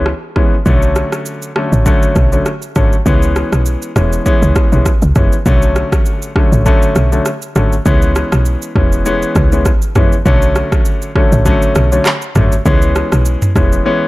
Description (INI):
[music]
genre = afrobeats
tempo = 100 BPM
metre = 4/4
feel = swing 55% on 16ths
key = B dorian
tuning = A4 = 440 Hz
[part]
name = warm baby grand piano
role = accompaniment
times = 0.0-14.1 s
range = D3 to C#4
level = -16 LUFS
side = left 2 dB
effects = none
[part]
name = woody log drum bass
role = bass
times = 0.0-13.8 s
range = E1 to C#2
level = -13 LUFS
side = equal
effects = none
[part]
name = afro-pop drum kit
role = drums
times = 0.1-13.8 s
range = handclaps, kick drum, rim click, shaker, toms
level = -14 LUFS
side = equal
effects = none
[sound]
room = digital ambience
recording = dark, warm production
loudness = -10 LUFS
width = side -19 dB against mid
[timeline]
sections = 0.0-5.5 A section; 5.5-14.1 B section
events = none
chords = 0.0 C#m7; 0.7 Bm7; 3.1 C#m7; 5.5 Bm7; 7.9 C#m7; 10.3 Bm7; 12.7 C#m7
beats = 0.06 | 0.66 1.26 1.86 2.46 | 3.06 3.66 4.26 4.86 | 5.46 6.06 6.66 7.26 | 7.86 8.46 9.06 9.66 | 10.26 10.86 11.46 12.06 | 12.66 13.26 13.86